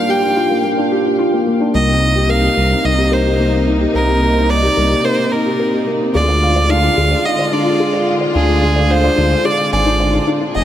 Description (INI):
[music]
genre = piano and strings electronica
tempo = 109 BPM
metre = 4/4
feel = straight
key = C minor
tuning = A4 = 440 Hz
[part]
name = rich violin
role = melody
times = 0.0-10.6 s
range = Ab4 to G5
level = -17 LUFS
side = right 1 dB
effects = none
[part]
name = warm studio string section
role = sustained chords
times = 0.0-10.6 s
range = G2 to Ab4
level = -20 LUFS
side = equal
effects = none
[part]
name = felt-muted upright piano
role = riff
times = 0.0-10.6 s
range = Bb3 to Ab5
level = -17 LUFS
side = left 1 dB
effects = none
[part]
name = dark detuned saw bass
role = bass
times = 1.7-10.6 s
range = F1 to D2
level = -16 LUFS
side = equal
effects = none
[sound]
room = moderate huge ambient reverb, RT60 7.5 s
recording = none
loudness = -12 LUFS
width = side -11 dB against mid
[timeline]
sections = 0.0-1.7 A section; 1.7-10.6 B section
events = build-up 0.0-1.7; drop 1.7-10.6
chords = 0.0 Gm7; 1.7 Cm7; 6.1 Ddim